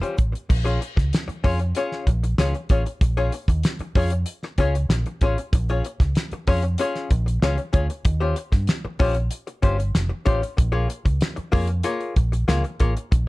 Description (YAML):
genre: funk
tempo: 95 BPM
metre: 4/4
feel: straight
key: Bb dorian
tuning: A4 = 441 Hz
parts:
  - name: archtop guitar, miked and amplified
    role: accompaniment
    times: 0.0-13.2 s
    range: G3 to Db5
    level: -26 LUFS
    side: left 3 dB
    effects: none
  - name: damped 70s drum kit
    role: drums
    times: 0.0-13.3 s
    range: crash cymbal, hi-hat, kick drum, snare drum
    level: -22 LUFS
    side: equal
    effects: none
  - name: vintage muted fingered electric bass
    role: bass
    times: 0.2-13.3 s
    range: F1 to G2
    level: -23 LUFS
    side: equal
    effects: none
room: little or no reverb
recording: none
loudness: -20 LUFS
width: side -20 dB against mid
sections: 0.5-13.3 A section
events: none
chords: 0.5 Bbm7; 8.1 Eb13 (rootless); 10.6 Bbm7